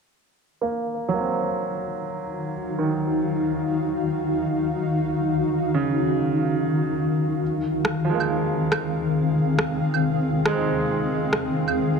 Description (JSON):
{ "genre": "future garage", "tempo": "free time", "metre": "none", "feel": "none", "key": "Eb dorian", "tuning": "A4 = 440 Hz", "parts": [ { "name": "granular cloud pad", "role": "sustained chords", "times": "1.9-12.0 s", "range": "Eb3 to F5", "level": "-23 LUFS", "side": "left 1 dB", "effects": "built-in reverb" }, { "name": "clear upright piano", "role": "accompaniment", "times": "0.6-12.0 s", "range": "Db3 to Eb4", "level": "-27 LUFS", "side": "right 3 dB", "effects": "low-pass filter, ping-pong delay" }, { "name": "electronic rim click and claves", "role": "drums", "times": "7.8-11.7 s", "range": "none", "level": "-25 LUFS", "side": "right 1 dB", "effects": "low-pass filter on snare, low-pass filter on perc" } ], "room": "wet concert hall reverb, RT60 1.9 s", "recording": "none", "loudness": "-21 LUFS", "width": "side -5 dB against mid", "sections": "0.5-12.0 A section", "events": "filter sweep on ambient pad 0.5-12.0; filter sweep on upright piano 0.5-12.0", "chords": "0.5 Ebm9; 7.4 Fm7/Eb" }